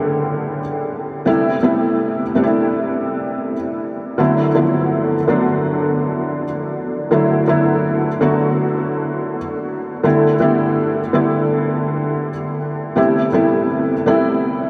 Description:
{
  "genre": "R&B",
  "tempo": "82 BPM",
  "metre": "4/4",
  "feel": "swing 54% on 16ths",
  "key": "D mixolydian",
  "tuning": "A4 = 442 Hz",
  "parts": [
    { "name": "felt-muted upright piano", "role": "solo", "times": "0.0-14.7 s", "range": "C3 to G4", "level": "-18 LUFS", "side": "equal", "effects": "ensemble chorus, analog delay" }
  ],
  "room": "wet huge ambient reverb, RT60 8.3 s",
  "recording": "dreamy mix soaked in reverb",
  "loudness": "-18 LUFS",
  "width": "mono",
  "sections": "0.0-14.7 A section",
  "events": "none",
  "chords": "0.0 A9sus4; 1.3 Am9; 4.2 D6; 10.0 A9sus4; 13.0 Am9",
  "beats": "0.53 | 1.26 2.00 2.73 3.46 | 4.19 4.92 5.66 6.39 | 7.12 7.85 8.58 9.31 | 10.04 10.78 11.51 12.24 | 12.97 13.70 14.44"
}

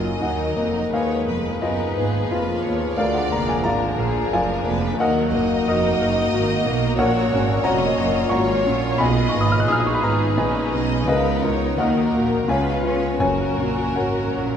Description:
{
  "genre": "classical, romantic movement for piano and orchestra",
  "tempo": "88 BPM",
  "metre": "3/4",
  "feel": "rubato",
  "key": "Eb minor, F# major from 7.0 s",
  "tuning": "A4 = 440 Hz",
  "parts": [
    { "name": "clear grand piano", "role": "melody", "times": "0.0-14.6 s", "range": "A#1 to F#6", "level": "-22 LUFS", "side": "left 2 dB", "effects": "none" },
    { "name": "rich studio violin section", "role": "melody", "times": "0.0-14.6 s", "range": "G#4 to C#5", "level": "-32 LUFS", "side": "left 4 dB", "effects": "none" },
    { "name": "rich studio violin section", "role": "second line", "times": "0.0-14.6 s", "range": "Ab4 to Eb5", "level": "-28 LUFS", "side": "left 1 dB", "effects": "none" },
    { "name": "rich studio viola section", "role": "accompaniment", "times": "0.0-14.6 s", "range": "F3 to F#4", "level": "-28 LUFS", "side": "right 1 dB", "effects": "none" },
    { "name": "warm French horn section", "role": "sustained chords", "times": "0.0-14.6 s", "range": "F3 to Bb4", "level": "-29 LUFS", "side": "left 3 dB", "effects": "none" },
    { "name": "rich studio cello section", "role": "bass", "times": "0.0-14.6 s", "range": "C#2 to C#4", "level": "-28 LUFS", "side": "right 3 dB", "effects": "none" },
    { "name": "rich studio double bass section", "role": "bass", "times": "0.0-14.6 s", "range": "F1 to C#3", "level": "-28 LUFS", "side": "right 5 dB", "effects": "none" },
    { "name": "timpani", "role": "percussion", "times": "11.1-14.3 s", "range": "F#2 to C#3", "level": "-32 LUFS", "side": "left 1 dB", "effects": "none" }
  ],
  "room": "moderate concert hall reverb, RT60 2.2 s",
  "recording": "none",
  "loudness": "-18 LUFS",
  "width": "side -8 dB against mid",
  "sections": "0.0-14.6 A section",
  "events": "none",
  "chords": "0.0 Ebm; 0.9 Fm7b5; 3.0 Bb7; 5.0 Ebm; 7.0 F#; 9.0 G#m; 11.1 C#13; 11.8 D#m; 12.5 C#7; 13.2 F#",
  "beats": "0.23 | 0.93 1.63 2.31 | 2.98 3.65 4.32 | 4.99 5.67 6.33 | 6.99 7.66 8.32 | 9.00 9.69 10.38 | 11.08 11.78 12.48 | 13.21 13.97"
}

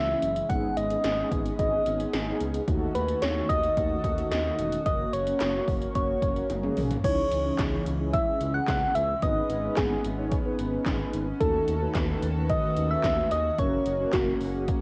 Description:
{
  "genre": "synth-pop",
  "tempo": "110 BPM",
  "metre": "4/4",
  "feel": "straight",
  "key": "C# minor",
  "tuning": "A4 = 442 Hz",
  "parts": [
    { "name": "soft struck synth lead", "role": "melody", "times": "0.0-14.7 s", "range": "F#4 to F#5", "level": "-30 LUFS", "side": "equal", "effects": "chorus, tape echo" },
    { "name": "mellow synth brass", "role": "accompaniment", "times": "0.0-14.8 s", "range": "D#3 to C#5", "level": "-34 LUFS", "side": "equal", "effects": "chorus, cassette tape" },
    { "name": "chorused pulse-width pad", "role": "sustained chords", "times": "0.0-14.8 s", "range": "C#3 to A4", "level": "-38 LUFS", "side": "equal", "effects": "cassette tape" },
    { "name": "smooth synth bass", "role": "bass", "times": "0.0-14.7 s", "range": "E1 to D#2", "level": "-35 LUFS", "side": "equal", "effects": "none" },
    { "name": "80s electronic pad drums", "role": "drums", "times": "0.2-14.8 s", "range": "crash cymbal, handclaps, hi-hat, kick drum, snare drum, toms", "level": "-33 LUFS", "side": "equal", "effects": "gated reverb on snare and toms, cassette tape" }
  ],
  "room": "light reverb",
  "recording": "home recording on cassette",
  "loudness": "-27 LUFS",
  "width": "mono",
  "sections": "0.0-7.0 A section; 7.0-14.8 B section",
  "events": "drum fill 6.5-7.0",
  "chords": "0.5 G#m; 2.7 D#dim; 4.9 F#; 7.0 C#madd9; 9.2 G#m; 11.4 D#dim; 13.6 F#",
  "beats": "| 0.50 1.04 1.59 2.13 | 2.68 3.23 3.77 4.32 | 4.86 5.41 5.95 6.50 | 7.04 7.59 8.13 8.68 | 9.22 9.77 10.32 10.86 | 11.41 11.95 12.50 13.04 | 13.59 14.13 14.68"
}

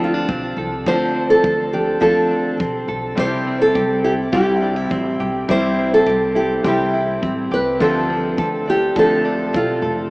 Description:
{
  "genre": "acoustic pop",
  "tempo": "104 BPM",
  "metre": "4/4",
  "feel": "straight",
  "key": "unclear",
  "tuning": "A4 = 438 Hz",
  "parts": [
    { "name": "nylon-string guitar", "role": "melody", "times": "0.0-10.0 s", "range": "F4 to C5", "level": "-18 LUFS", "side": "equal", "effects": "none" },
    { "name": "fingerpicked steel-string acoustic guitar", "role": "accompaniment", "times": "0.0-10.1 s", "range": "C3 to A4", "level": "-22 LUFS", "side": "left 1 dB", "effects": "none" },
    { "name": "direct-recorded clean electric guitar", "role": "arpeggios", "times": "0.0-10.1 s", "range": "F3 to A4", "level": "-25 LUFS", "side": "right 1 dB", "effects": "spring reverb, tape echo" },
    { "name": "upright bass", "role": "bass", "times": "0.0-10.1 s", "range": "F1 to D2", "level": "-30 LUFS", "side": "equal", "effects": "none" },
    { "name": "kick drum", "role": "drums", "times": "0.3-9.7 s", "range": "none", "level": "-26 LUFS", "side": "equal", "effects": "none" },
    { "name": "bright upright piano", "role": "accompaniment", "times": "3.2-10.1 s", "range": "G3 to C5", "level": "-27 LUFS", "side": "left 1 dB", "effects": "none" }
  ],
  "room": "wet cathedral reverb, RT60 5.5 s",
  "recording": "in a vast, echoing space, small speaker sound",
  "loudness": "-15 LUFS",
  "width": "side -25 dB against mid",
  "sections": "0.0-10.1 A section",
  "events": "none",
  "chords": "0.0 Dm7; 3.2 C; 7.8 Dm7",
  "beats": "0.29 | 0.87 1.44 2.02 2.60 | 3.18 3.76 4.33 4.91 | 5.49 6.07 6.65 7.23 | 7.80 8.38 8.96 9.54"
}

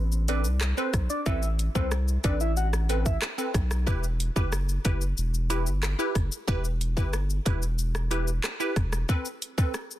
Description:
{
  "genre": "dancehall",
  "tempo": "92 BPM",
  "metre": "4/4",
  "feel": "straight",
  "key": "A dorian",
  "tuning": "A4 = 440 Hz",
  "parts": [
    { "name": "saturated sub bass", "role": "bass", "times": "0.0-9.0 s", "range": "E1 to C2", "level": "-27 LUFS", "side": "equal", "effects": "none" },
    { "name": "island pop drum kit", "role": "drums", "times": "0.1-10.0 s", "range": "handclaps, hi-hat, kick drum, rim click, shaker", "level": "-28 LUFS", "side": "equal", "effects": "none" },
    { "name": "soft octave-layered synth lead", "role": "melody", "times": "0.3-3.2 s", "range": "C5 to F#5", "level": "-33 LUFS", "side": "equal", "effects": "chorus, phaser, ping-pong delay" },
    { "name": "wavetable chord stab", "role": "accompaniment", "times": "0.3-9.8 s", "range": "C4 to B4", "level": "-32 LUFS", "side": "right 1 dB", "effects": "phaser, sidechain pumping" }
  ],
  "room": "little or no reverb",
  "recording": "dense, heavily limited modern master",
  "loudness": "-24 LUFS",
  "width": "side -14 dB against mid",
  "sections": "0.0-10.0 A section",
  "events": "none",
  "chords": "0.0 Amadd9; 3.9 Em; 9.1 Amadd9",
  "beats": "0.61 | 1.26 1.92 2.57 3.22 | 3.87 4.53 5.18 5.83 | 6.48 7.13 7.79 8.44 | 9.09 9.74"
}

